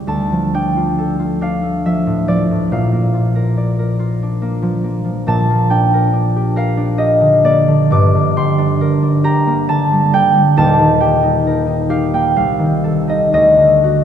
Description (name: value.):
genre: classical, solo harp piece.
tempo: 59-72 BPM.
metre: 3/4.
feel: rubato.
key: G minor from 5.3 s.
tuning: A4 = 440 Hz.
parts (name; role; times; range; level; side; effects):
concert harp; solo; 0.0-14.0 s; Eb1 to D6; -12 LUFS; equal; none.
room: wet church reverb, RT60 3.2 s.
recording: minimal, uncompressed stereo recording.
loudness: -12 LUFS.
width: side -8 dB against mid.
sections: 0.0-14.0 A section.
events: none.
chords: 0.1 Dm; 2.7 Bb; 5.3 Gm/Bb; 7.9 Gm; 10.6 Eb; 12.4 Adim/C; 13.3 D.